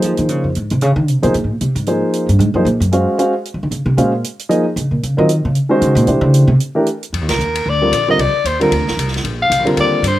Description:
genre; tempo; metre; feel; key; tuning
modal jazz; 228 BPM; 4/4; swing 58% on 8ths; Bb minor; A4 = 440 Hz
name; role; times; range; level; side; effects
warm concert grand piano; accompaniment; 0.0-10.0 s; D3 to F5; -15 LUFS; equal; slapback echo
upright bass; bass; 0.0-10.2 s; F1 to F3; -16 LUFS; equal; none
open jazz drum kit; drums; 0.0-10.1 s; hi-hat, ride cymbal, snare drum; -25 LUFS; left 1 dB; none
growling soprano saxophone; melody; 7.3-10.2 s; Bb4 to F5; -16 LUFS; left 2 dB; slapback echo
room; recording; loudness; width
little or no reverb; recorded outdoors, with no room sound; -13 LUFS; side -14 dB against mid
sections
0.0-7.1 A section; 7.1-10.2 B section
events
upright bass solo 0.0-7.1; band accent 7.3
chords
0.0 Bb7sus2; 2.9 Ebm9; 6.1 C69; 7.1 F13sus4

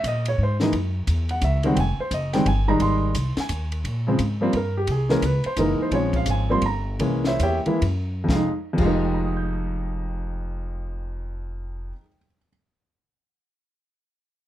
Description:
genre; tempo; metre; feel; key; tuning
jazz piano trio; 122-174 BPM; 3/4; swing 63% on 8ths; F minor; A4 = 439 Hz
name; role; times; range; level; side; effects
warm baby grand piano; melody; 0.0-12.5 s; F2 to G6; -23 LUFS; equal; none
upright bass; bass; 0.0-11.9 s; F1 to Bb2; -25 LUFS; equal; none
compact cocktail drum kit; drums; 0.0-9.0 s; crash cymbal, hi-hat, kick drum, ride cymbal, snare drum; -31 LUFS; left 1 dB; none
room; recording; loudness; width
light reverb; none; -20 LUFS; side -12 dB against mid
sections
0.0-3.8 A section; 3.8-8.3 B section; 8.3-11.2 C section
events
slowing down 5.9-8.3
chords
0.0 Absus2; 0.7 Gb5; 1.8 Fm7; 3.8 Bb7sus2; 4.5 Gm; 4.9 C7(#5, no3); 5.6 Gb7; 5.9 Bbm9; 6.6 Gm; 7.0 C7b9b13; 7.8 N.C.; 8.3 Fm7

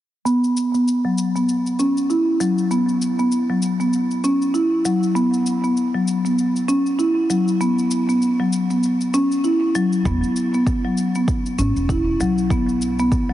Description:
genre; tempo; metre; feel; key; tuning
organic downtempo; 98 BPM; 4/4; swing 58% on 16ths; unclear; A4 = 440 Hz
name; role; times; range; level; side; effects
marimba with medium mallets; arpeggios; 0.3-13.3 s; F#3 to E4; -17 LUFS; equal; low-pass filter, tape echo
shaker; drums; 0.3-13.3 s; none; -34 LUFS; left 3 dB; none
upright bass; bass; 10.1-13.3 s; E1 to B1; -25 LUFS; equal; tube saturation
electronic kick drum; drums; 10.1-13.3 s; none; -22 LUFS; equal; none
room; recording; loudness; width
moderate huge ambient reverb, RT60 8.8 s; heavily compressed radio sound, multiband compression, nothing above 10.9 kHz; -17 LUFS; side -13 dB against mid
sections
0.3-13.3 A section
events
filter sweep on marimba 0.3-13.3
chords
0.3 F#sus4; 10.1 E5

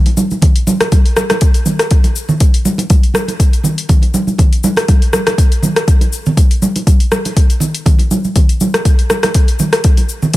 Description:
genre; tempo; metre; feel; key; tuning
house; 121 BPM; 4/4; swing 54% on 16ths; none; none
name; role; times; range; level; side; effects
deep house drum kit; drums; 0.1-10.4 s; cabasa, hi-hat, rim click; -17 LUFS; left 1 dB; overdrive
congas; percussion; 0.1-10.4 s; none; -17 LUFS; right 2 dB; none
electronic kick drum; drums; 0.4-10.4 s; none; -10 LUFS; equal; overdrive
room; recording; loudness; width
little or no reverb; none; -10 LUFS; side -17 dB against mid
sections
0.0-10.4 A section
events
none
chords
none

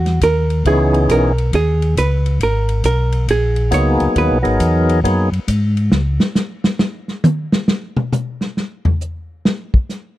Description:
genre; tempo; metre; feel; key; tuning
soul jazz organ trio; 136 BPM; 4/4; swing 65% on 8ths; G# minor; A4 = 441 Hz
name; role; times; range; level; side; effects
hollow-body jazz guitar; accompaniment; 0.0-4.9 s; F#4 to C#5; -19 LUFS; right 3 dB; none
mellow tonewheel organ; bass; 0.0-6.2 s; G#1 to G#2; -16 LUFS; equal; chorus vibrato, slow rotary speaker
warm soul drum kit; drums; 0.1-10.0 s; hi-hat, kick drum, ride cymbal, snare drum, toms; -17 LUFS; equal; none
percussive tonewheel organ; melody; 0.7-5.3 s; E3 to A#4; -16 LUFS; left 1 dB; slow rotary speaker
room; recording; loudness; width
small room ambience; none; -14 LUFS; side -15 dB against mid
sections
0.0-10.2 A section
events
hollow-body jazz guitar solo 0.0-10.2; drum solo 5.9-10.2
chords
0.0 G#7sus2 (rootless); 0.6 C#m9; 2.4 G#m9; 5.9 N.C.

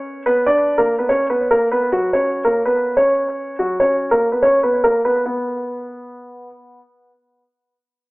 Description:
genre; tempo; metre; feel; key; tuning
hip hop; 144 BPM; 4/4; half-time; unclear; A4 = 437 Hz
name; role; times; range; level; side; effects
dark concert grand piano; melody; 0.0-6.5 s; F#3 to D5; -15 LUFS; equal; low-pass filter, analog delay
room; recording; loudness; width
moderate plate reverb, RT60 1.2 s, small room ambience; echo-heavy mix, low-pass filter, telephone sound; -15 LUFS; side -24 dB against mid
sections
0.0-5.3 A section; 5.3-8.1 B section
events
filter sweep 0.0-5.3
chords
0.0 Bm; 1.9 F#sus4; 5.3 N.C.

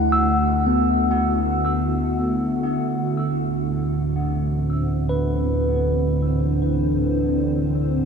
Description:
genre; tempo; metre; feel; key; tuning
ambient; free time; none; none; D mixolydian; A4 = 440 Hz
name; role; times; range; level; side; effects
shimmering ambient pad; sustained chords; 0.0-8.1 s; A2 to F#4; -26 LUFS; equal; chorus, built-in reverb
tine electric piano; arpeggios; 0.0-8.1 s; A3 to E6; -23 LUFS; left 1 dB; phaser, tape echo
round analog bass; bass; 0.0-8.1 s; D2; -26 LUFS; equal; tube saturation
analog drone; drone; 0.0-8.1 s; D3 to D4; -25 LUFS; right 2 dB; chorus
room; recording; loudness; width
wet huge ambient reverb, RT60 7.8 s; none; -19 LUFS; side -6 dB against mid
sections
0.0-8.1 A section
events
fade-in on ambient pad 0.0-8.1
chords
0.0 Dadd9

